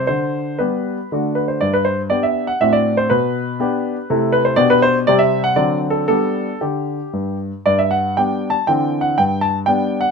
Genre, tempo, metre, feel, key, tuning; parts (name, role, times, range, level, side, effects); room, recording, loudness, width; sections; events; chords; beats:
classical-period piano sonatina; 120 BPM; 3/4; rubato; G major; A4 = 439 Hz
clear baby grand piano; solo; 0.0-10.1 s; G2 to A5; -15 LUFS; equal
light reverb; -15 LUFS; side -5 dB against mid
0.0-7.7 A section; 7.7-10.1 B section
0.1 G/D; 1.1 D; 1.6 G; 2.6 D7/A; 3.1 G/B; 4.1 Am/C; 4.6 G/B; 5.1 C; 5.6 D7; 6.1 G; 8.7 Dsus2; 9.2 G
| 0.08 0.59 1.10 | 1.61 2.12 2.62 | 3.11 3.60 4.09 | 4.58 5.07 5.57 | 6.09 6.62 7.14 | 7.67 8.17 8.67 | 9.17 9.67